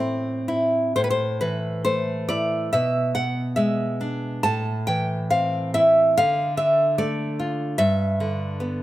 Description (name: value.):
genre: romantic piece for solo classical guitar.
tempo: 60-76 BPM.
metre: 2/4.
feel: rubato.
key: A minor.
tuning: A4 = 440 Hz.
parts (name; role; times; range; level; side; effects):
nylon-string guitar; solo; 0.0-8.8 s; G2 to A5; -20 LUFS; equal; none.
room: light reverb.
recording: close, detailed microphones.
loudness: -20 LUFS.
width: side -15 dB against mid.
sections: 1.0-8.8 A section.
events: none.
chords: 0.0 Am; 1.0 A5; 2.7 G#dim/B; 4.4 Am; 6.2 Dm; 7.8 G.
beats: 0.00 | 0.96 1.86 | 2.73 3.57 | 4.44 5.31 | 6.18 6.99 | 7.79 8.61.